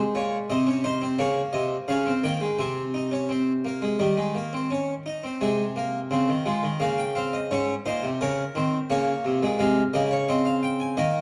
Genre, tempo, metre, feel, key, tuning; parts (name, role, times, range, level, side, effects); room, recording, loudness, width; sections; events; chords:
classical, baroque-style 3-part fugue for harpsichord; 86 BPM; 4/4; straight; Ab major; A4 = 440 Hz
harpsichord; solo; 0.0-11.2 s; Ab2 to Ab5; -25 LUFS; equal
moderate recital hall reverb, RT60 1.4 s; dark, warm production; -25 LUFS; mono
0.0-5.4 A section; 5.4-11.2 B section
0.0 Ab; 1.2 Bbm; 2.6 Ab/C; 4.0 Eb; 5.4 Ab/C; 6.8 Bbm/Db; 8.2 Eb5/Db; 9.6 Ab/C